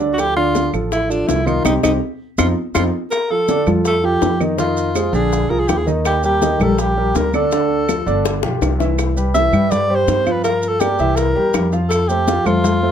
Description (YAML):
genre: Afro-Cuban jazz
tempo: 164 BPM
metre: 4/4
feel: straight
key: unclear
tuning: A4 = 440 Hz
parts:
  - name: warm grand piano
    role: accompaniment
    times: 0.0-12.9 s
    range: D3 to F5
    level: -20 LUFS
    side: right 1 dB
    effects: none
  - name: upright bass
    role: bass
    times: 0.0-12.9 s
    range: G1 to G2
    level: -21 LUFS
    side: right 1 dB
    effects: none
  - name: bongos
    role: percussion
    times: 0.0-12.8 s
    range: none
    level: -25 LUFS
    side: left 7 dB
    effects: none
  - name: congas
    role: percussion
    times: 0.0-12.9 s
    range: none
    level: -23 LUFS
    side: left 2 dB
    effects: none
  - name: maracas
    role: percussion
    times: 0.0-12.8 s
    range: none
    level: -32 LUFS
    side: right 4 dB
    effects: none
  - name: clear alto saxophone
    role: melody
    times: 0.1-12.9 s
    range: D4 to E5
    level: -19 LUFS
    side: equal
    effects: none
  - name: claves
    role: percussion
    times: 0.2-12.6 s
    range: none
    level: -29 LUFS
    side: right 7 dB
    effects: none
room: light reverb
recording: none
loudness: -14 LUFS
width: side -8 dB against mid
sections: 0.0-3.1 A section; 3.1-12.9 B section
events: band accent 1.7-3.1; drum fill 2.6-3.1, 8.2-9.0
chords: 0.2 Dm7; 1.7 Cm; 2.4 F5; 3.1 F13; 4.6 Bb7; 6.1 Ebmaj7; 7.5 Dm; 8.2 G7; 9.0 Cmaj7; 10.4 Gm7; 11.2 C7; 11.9 Fadd9